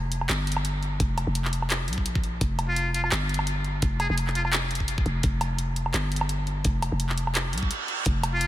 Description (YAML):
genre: half-time drum and bass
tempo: 170 BPM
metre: 4/4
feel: swing 54% on 16ths, half-time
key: unclear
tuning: A4 = 437 Hz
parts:
  - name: growling 808-style bass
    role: bass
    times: 0.0-8.5 s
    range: F1 to C2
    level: -27 LUFS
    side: equal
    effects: none
  - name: drum and bass drum kit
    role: drums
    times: 0.1-8.5 s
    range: handclaps, hi-hat, woodblock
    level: -29 LUFS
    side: right 1 dB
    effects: small room ambience
  - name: electronic kick drum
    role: drums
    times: 1.0-8.1 s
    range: none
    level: -26 LUFS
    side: equal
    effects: small room ambience
  - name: trumpet with metal mute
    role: melody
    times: 2.7-4.5, 8.3-8.5 s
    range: F4 to Ab4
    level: -33 LUFS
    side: left 1 dB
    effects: ping-pong delay
  - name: reverse cymbal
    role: sound effects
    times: 7.5-8.1 s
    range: none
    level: -31 LUFS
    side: right 6 dB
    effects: none
room: light reverb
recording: none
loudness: -24 LUFS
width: side -14 dB against mid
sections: 0.0-8.5 A section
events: reverse cymbal 7.5-8.1; break 7.7-8.1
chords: 0.0 Fsus2